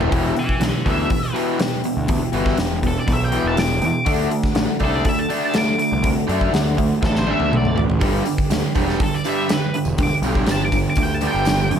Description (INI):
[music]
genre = classic rock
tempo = 122 BPM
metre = 4/4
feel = straight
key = unclear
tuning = A4 = 440 Hz
[part]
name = picked steel-string acoustic guitar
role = accompaniment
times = 0.0-11.8 s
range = D3 to C5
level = -30 LUFS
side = left 11 dB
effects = none
[part]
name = biting overdriven guitar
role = riff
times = 0.0-11.8 s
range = E2 to D4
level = -23 LUFS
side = right 10 dB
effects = none
[part]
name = raw garage guitar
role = riff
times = 0.0-11.8 s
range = E2 to E4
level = -25 LUFS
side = left 13 dB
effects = overdrive
[part]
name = fuzz picked electric bass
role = bass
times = 0.0-11.8 s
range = E1 to G2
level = -23 LUFS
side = equal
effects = overdrive
[part]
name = gated 80s drum kit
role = drums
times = 0.0-11.8 s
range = hi-hat, kick drum, snare drum, toms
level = -22 LUFS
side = equal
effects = none
[part]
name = octave-fuzz lead guitar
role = melody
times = 0.4-11.7 s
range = A4 to D6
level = -25 LUFS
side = equal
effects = distortion
[part]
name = tambourine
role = percussion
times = 8.3-11.6 s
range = none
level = -41 LUFS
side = right 14 dB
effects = none
[sound]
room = small room ambience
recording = none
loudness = -17 LUFS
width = side -8 dB against mid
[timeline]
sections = 0.1-11.8 A section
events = lead electric guitar solo 0.1-11.8; drum fill 7.0-8.0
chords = 0.1 Em; 4.1 D; 8.0 G